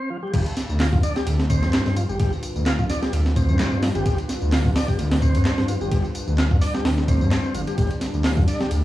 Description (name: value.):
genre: breakbeat, breaks.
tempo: 129 BPM.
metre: 4/4.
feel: swing 55% on 16ths.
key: unclear.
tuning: A4 = 445 Hz.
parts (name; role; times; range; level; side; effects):
tonewheel organ; riff; 0.0-8.7 s; F3 to F4; -28 LUFS; equal; slow rotary speaker, low-pass filter, dub echo.
dark analog pad; sustained chords; 0.5-8.8 s; G3 to D5; -30 LUFS; equal; chorus, vintage 12-bit sampler grit, sidechain pumping.
detuned saw bass; bass; 0.3-8.8 s; G1 to G2; -22 LUFS; equal; none.
breakbeat sampler-style drum kit; drums; 0.3-8.8 s; crash cymbal, hi-hat, kick drum, ride cymbal, snare drum; -22 LUFS; equal; none.
garage drum kit; drums; 0.3-8.8 s; handclaps, ride cymbal, tambourine; -35 LUFS; equal; none.
room: moderate small room ambience, RT60 0.5 s.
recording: played on a big sound system in a bare room, large studio reverb, vinyl crackle, small room ambience.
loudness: -19 LUFS.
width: side -15 dB against mid.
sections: 0.3-8.8 A section.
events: break 0.0-0.3; drop 0.3-8.8.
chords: 0.3 G7.